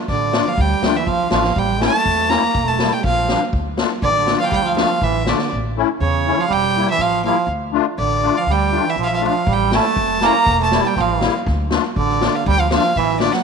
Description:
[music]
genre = klezmer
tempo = 121 BPM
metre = 2/4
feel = straight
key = D harmonic minor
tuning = A4 = 440 Hz
[part]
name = clear violin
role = melody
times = 0.1-13.4 s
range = C#5 to Bb5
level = -20 LUFS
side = left 1 dB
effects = none
[part]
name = trombone with metal mute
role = second line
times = 0.1-13.4 s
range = C#3 to Bb3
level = -20 LUFS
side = right 11 dB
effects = none
[part]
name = upright bass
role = bass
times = 0.1-13.3 s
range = E1 to E2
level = -23 LUFS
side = equal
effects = none
[part]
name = street-band drum kit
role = drums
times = 0.1-5.5, 9.5-13.4 s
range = kick drum, snare drum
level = -23 LUFS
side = left 1 dB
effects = none
[part]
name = musette accordion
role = accompaniment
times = 0.3-13.3 s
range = G3 to F4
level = -23 LUFS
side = left 12 dB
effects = none
[sound]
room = moderate echo chamber reverb, RT60 2.1 s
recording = 1960s-style stereo with parts hard left and right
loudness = -15 LUFS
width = side -5 dB against mid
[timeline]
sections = 0.0-5.5 A section; 5.5-13.4 A section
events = none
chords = 0.0 Dm; 1.6 A; 2.5 Edim; 3.5 Dm; 5.5 A; 6.5 Edim; 7.5 Dm; 9.5 A; 10.5 Edim; 11.5 Dm

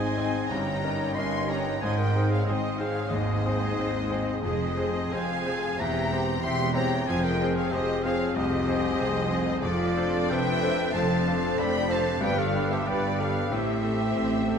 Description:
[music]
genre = classical, romantic movement for piano and orchestra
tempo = 93 BPM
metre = 4/4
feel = rubato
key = unclear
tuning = A4 = 440 Hz
[part]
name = clear grand piano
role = melody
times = 0.0-14.6 s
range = C2 to Eb5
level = -29 LUFS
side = left 2 dB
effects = none
[part]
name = warm symphonic violin section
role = melody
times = 0.0-14.6 s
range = D5 to C6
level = -34 LUFS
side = left 4 dB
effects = none
[part]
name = clear oboe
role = second line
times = 0.0-14.5 s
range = D5 to C6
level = -36 LUFS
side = right 2 dB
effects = none
[part]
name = mellow hollow silver concert flute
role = second line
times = 0.0-14.5 s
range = F4 to E5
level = -34 LUFS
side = left 1 dB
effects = none
[part]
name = rich symphonic violin section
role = second line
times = 0.0-14.6 s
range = A4 to Ab5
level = -36 LUFS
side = left 2 dB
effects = none
[part]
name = rich symphonic viola section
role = accompaniment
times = 0.0-14.6 s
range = B3 to A4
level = -36 LUFS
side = right 2 dB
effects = none
[part]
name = dark French horn section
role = sustained chords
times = 0.0-14.6 s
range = B3 to A4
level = -35 LUFS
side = left 5 dB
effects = none
[part]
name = bright symphonic cello section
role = bass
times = 0.0-14.6 s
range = E2 to A2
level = -32 LUFS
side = right 3 dB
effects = none
[part]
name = clear symphonic double bass section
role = bass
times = 0.0-14.6 s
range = E1 to A1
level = -34 LUFS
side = right 3 dB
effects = none
[part]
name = timpani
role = percussion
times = 0.5-1.5 s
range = G2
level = -43 LUFS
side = left 3 dB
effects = none
[sound]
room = wet scoring stage reverb, RT60 1.8 s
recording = none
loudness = -24 LUFS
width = side -7 dB against mid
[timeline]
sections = 0.0-14.6 A section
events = none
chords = 0.0 Ab; 0.5 Eb7/G; 1.8 Ab; 4.4 Fm7; 5.8 C7/E; 7.1 Fm; 9.6 Dm7/F; 12.2 G; 13.5 Am7

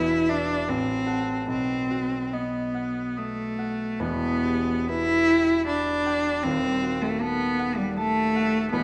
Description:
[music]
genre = classical, romantic duo for cello and harp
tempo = 66-80 BPM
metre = 3/4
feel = rubato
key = E minor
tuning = A4 = 440 Hz
[part]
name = clear cello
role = melody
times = 0.0-8.8 s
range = G3 to E4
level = -26 LUFS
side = equal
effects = none
[part]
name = concert harp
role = accompaniment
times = 0.0-8.8 s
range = D#1 to D#6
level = -33 LUFS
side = equal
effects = none
[sound]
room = wet scoring stage reverb, RT60 1.6 s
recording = dark, warm production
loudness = -25 LUFS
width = mono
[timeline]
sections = 0.0-8.8 A section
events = none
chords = 0.0 E5; 0.7 F#dim/A; 1.5 B; 4.0 Em; 6.4 D#dim

